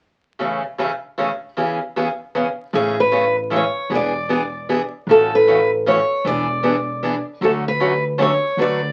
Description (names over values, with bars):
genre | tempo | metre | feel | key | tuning
acoustic string swing (jazz manouche) | 154 BPM | 3/4 | swing 63% on 8ths | A major | A4 = 440 Hz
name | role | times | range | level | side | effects
picked steel-string acoustic guitar | accompaniment | 0.4-8.8 s | A2 to B4 | -23 LUFS | equal | none
upright bass | bass | 2.7-8.9 s | E1 to D2 | -31 LUFS | equal | none
picked steel-string acoustic guitar | melody | 2.8-8.9 s | G#4 to D5 | -20 LUFS | equal | none
room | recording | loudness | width
moderate studio reverb, RT60 0.5 s | very old 78 rpm record, vinyl crackle | -19 LUFS | mono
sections
0.4-2.7 A section; 2.7-8.9 B section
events
none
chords
0.4 Amaj7; 1.6 C#m7; 2.7 Amaj7; 3.9 E7; 5.1 A69; 6.2 E7; 7.4 Dmaj7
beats
| 0.39 0.78 1.17 | 1.56 1.96 2.35 | 2.74 3.13 3.52 | 3.91 4.30 4.68 | 5.08 5.46 5.85 | 6.24 6.63 7.02 | 7.41 7.80 8.19 | 8.58